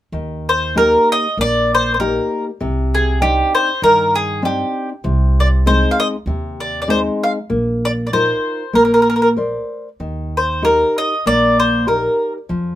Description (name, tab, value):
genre	italian folk, Italian serenade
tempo	97 BPM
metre	4/4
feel	swing 54% on 8ths, rubato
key	Eb major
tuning	A4 = 440 Hz
part	nylon-string guitar	accompaniment	0.1-12.8 s	C3 to D5	-20 LUFS	left 1 dB	none
part	upright bass	bass	0.1-12.8 s	Bb1 to G2	-20 LUFS	right 1 dB	none
part	mandolin	melody	0.5-12.3 s	G4 to F5	-15 LUFS	equal	none
room	light reverb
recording	minimal, uncompressed stereo recording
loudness	-14 LUFS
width	side -13 dB against mid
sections	0.1-12.8 A section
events	none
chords	0.1 Eb; 2.6 Cmadd9; 5.0 Ab/C; 7.5 Bbsus4; 8.7 Bbadd9; 10.0 Eb